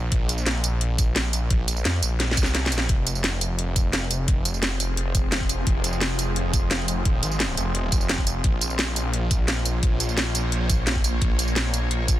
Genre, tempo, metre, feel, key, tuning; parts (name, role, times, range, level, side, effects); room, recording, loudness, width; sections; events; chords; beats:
dark technical drum and bass; 173 BPM; 4/4; straight; F minor; A4 = 440 Hz
snarling distorted saw bass; bass; 0.0-12.2 s; Eb1 to F2; -25 LUFS; equal; distortion, tube saturation
drum and bass drum kit; drums; 0.1-12.2 s; hi-hat, snare drum, tambourine; -26 LUFS; equal
electronic kick drum; drums; 0.1-12.2 s; -23 LUFS; equal
swarming drone; sustained chords; 4.3-12.2 s; F3 to Db5; -31 LUFS; equal; built-in reverb, phaser, vintage 12-bit sampler grit, sidechain pumping
little or no reverb; dense, heavily limited modern master; -21 LUFS; side -14 dB against mid
0.0-12.2 A section
drum fill 2.2-2.9
0.0 N.C.; 2.9 Fm; 8.4 Bbmadd9
| 0.12 0.47 0.81 1.16 | 1.50 1.85 2.20 2.55 | 2.89 3.24 3.59 3.93 | 4.28 4.63 4.97 5.32 | 5.67 6.01 6.36 6.71 | 7.05 7.40 7.75 8.10 | 8.44 8.79 9.13 9.48 | 9.83 10.18 10.52 10.87 | 11.22 11.56 11.91